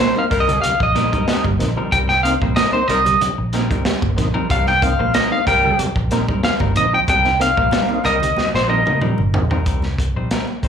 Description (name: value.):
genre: funk.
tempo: 93 BPM.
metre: 4/4.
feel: straight.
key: C minor.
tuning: A4 = 438 Hz.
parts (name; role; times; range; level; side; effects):
lightly driven lead guitar; melody; 0.0-9.0 s; C5 to G5; -17 LUFS; equal; plate reverb, slapback echo.
semi-hollow electric guitar; accompaniment; 0.0-10.7 s; G3 to C5; -27 LUFS; left 7 dB; plate reverb, slapback echo.
clean electric guitar; riff; 0.0-9.6 s; Eb3 to C4; -26 LUFS; right 7 dB; analog chorus, slapback echo.
tonewheel organ; stabs; 0.2-9.6 s; C3 to Eb4; -27 LUFS; right 1 dB; chorus vibrato, slow rotary speaker, plate reverb, slapback echo.
congas; percussion; 0.2-10.7 s; none; -30 LUFS; right 6 dB; none.
clear horn section; second line; 0.3-8.2 s; G3 to Bb4; -24 LUFS; left 3 dB; plate reverb, slapback echo.
vintage muted fingered electric bass; bass; 0.3-10.7 s; G1 to C2; -22 LUFS; equal; none.
crunchy breakbeat drum kit; drums; 0.3-10.7 s; hi-hat, kick drum, snare drum, toms; -21 LUFS; equal; none.
room: moderate club reverb, RT60 0.7 s.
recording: live gig heard through the venue's PA, club reverb.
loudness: -15 LUFS.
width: side -7 dB against mid.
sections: 0.0-9.7 A section; 9.7-10.7 B section.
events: lead electric guitar solo 0.0-9.7; drum fill 8.4-9.7.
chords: 0.0 Cm7.